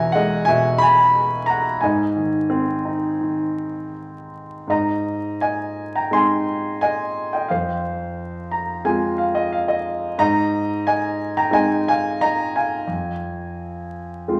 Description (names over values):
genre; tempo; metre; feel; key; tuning
classical, lyrical solo piano; 79-91 BPM; 4/4; rubato; Ab major; A4 = 438 Hz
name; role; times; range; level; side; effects
warm concert grand piano; solo; 0.0-14.4 s; E2 to C6; -21 LUFS; equal; none
room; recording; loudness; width
wet recital hall reverb, RT60 1.3 s; vinyl crackle; -21 LUFS; mono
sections
0.0-4.7 A section; 4.7-14.4 B section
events
grand piano fill 8.2-10.2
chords
0.0 E; 1.8 Ab; 7.5 Fm; 10.2 Ab; 12.9 Fm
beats
0.47 1.15 | 1.82 2.51 3.21 3.95 | 4.69 5.41 6.12 6.82 | 7.50 8.18 8.85 9.51 | 10.18 10.85 11.52 12.19 | 12.87 13.56 14.27